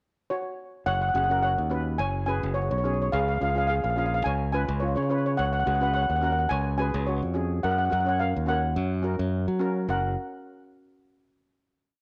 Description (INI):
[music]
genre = calypso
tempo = 106 BPM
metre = 4/4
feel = swing 53% on 16ths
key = F# major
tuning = A4 = 440 Hz
[part]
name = steel pan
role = melody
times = 0.3-10.2 s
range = E#4 to G#5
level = -29 LUFS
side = equal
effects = slapback echo
[part]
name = modern bright fingered electric bass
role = bass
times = 0.9-10.1 s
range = F#1 to F#3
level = -30 LUFS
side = equal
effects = none
[part]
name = steel pan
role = accompaniment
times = 1.1-10.2 s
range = C#4 to C#5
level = -36 LUFS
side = equal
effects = none
[sound]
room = wet echo chamber reverb, RT60 1.3 s, small room ambience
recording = none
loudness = -26 LUFS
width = mono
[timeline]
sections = 0.0-0.9 pickup bar; 0.9-9.9 chorus; 9.9-12.0 final chord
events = none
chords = 0.0 N.C.; 0.9 F#sus2; 3.1 C#; 5.4 F#sus2/C#; 7.6 F#